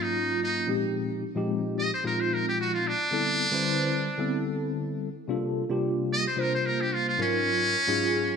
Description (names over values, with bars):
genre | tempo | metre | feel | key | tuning
jazz | 110 BPM | 4/4 | straight | unclear | A4 = 438 Hz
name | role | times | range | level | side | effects
trumpet with metal mute | melody | 0.0-8.4 s | Db4 to Eb5 | -27 LUFS | equal | none
bright tine electric piano | accompaniment | 0.0-8.4 s | Ab2 to C5 | -27 LUFS | left 1 dB | medium stereo tremolo, phaser
room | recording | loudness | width
wet lush hall reverb, RT60 1.9 s, small room ambience | bright 1980s-style digital production | -24 LUFS | side -6 dB against mid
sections
0.0-8.4 A section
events
muted trumpet solo 0.0-8.4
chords
0.0 Ab13sus4; 0.7 Bb13sus4; 3.1 D13sus4; 5.3 C13sus4; 7.2 Ab13sus4